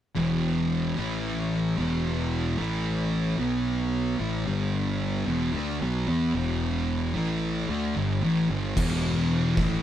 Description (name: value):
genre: stoner and doom metal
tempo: 56 BPM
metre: 4/4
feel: straight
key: E minor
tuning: A4 = 440 Hz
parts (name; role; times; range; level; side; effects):
- thick fuzz guitar; riff; 0.2-9.8 s; E2 to B3; -29 LUFS; left 5 dB; distortion
- thick fuzz guitar; riff; 0.2-9.8 s; E2 to B3; -29 LUFS; right 4 dB; distortion
- fuzz fingered electric bass; bass; 0.2-9.8 s; E1 to E2; -30 LUFS; equal; overdrive
- oversized low-tuned drum kit; drums; 8.8-9.8 s; crash cymbal, kick drum, snare drum; -28 LUFS; equal; none
room: light reverb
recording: band playing live in one room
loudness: -24 LUFS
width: side -11 dB against mid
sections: 0.2-8.8 A section; 8.8-9.8 B section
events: none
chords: 0.2 Em; 8.8 E5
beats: | 0.16 1.24 2.31 3.39 | 4.47 5.54 6.62 7.69 | 8.77